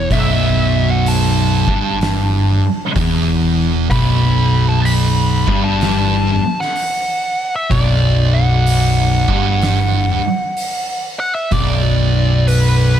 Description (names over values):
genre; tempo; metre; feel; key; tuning
stoner and doom metal; 63 BPM; 4/4; swing 65% on 8ths; B minor; A4 = 437 Hz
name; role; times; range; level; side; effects
fuzz lead guitar; melody; 0.0-13.0 s; B4 to B5; -20 LUFS; equal; wah, distortion, analog delay
thick fuzz guitar; riff; 0.0-13.0 s; B1 to G2; -17 LUFS; left 6 dB; distortion
thick fuzz guitar; riff; 0.0-13.0 s; B1 to G2; -18 LUFS; right 8 dB; distortion
picked electric bass; bass; 0.0-13.0 s; B0 to G1; -19 LUFS; equal; tube saturation
oversized low-tuned drum kit; drums; 0.1-12.8 s; hi-hat, kick drum, snare drum; -24 LUFS; equal; none
room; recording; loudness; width
light reverb; none; -13 LUFS; side -10 dB against mid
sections
0.0-13.0 A section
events
none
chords
0.0 B5